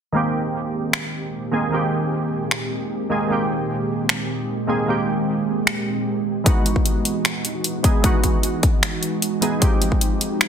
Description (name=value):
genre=future bass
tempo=152 BPM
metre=4/4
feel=half-time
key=unclear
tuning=A4 = 440 Hz
part: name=glassy digital keys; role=accompaniment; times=0.1-10.5 s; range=Eb3 to Ab4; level=-23 LUFS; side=right 2 dB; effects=chorus, sidechain pumping, low-pass filter, dub echo
part: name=ethereal airy pad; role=sustained chords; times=0.6-10.5 s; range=Bb2 to G4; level=-27 LUFS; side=right 1 dB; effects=ensemble chorus, built-in reverb, sidechain pumping
part: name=trap drum kit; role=drums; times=0.9-10.5 s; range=finger snaps, hi-hat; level=-22 LUFS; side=left 1 dB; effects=overdrive, soft clipping on snare, studio reverb
part: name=electronic kick drum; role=drums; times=6.5-10.0 s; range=none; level=-18 LUFS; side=left 1 dB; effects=overdrive, studio reverb
room=light reverb, digital ambience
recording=dense, heavily limited modern master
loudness=-19 LUFS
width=side -8 dB against mid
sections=0.1-10.5 A section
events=none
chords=0.1 Abmaj9; 6.3 Emaj9; 9.6 Fm9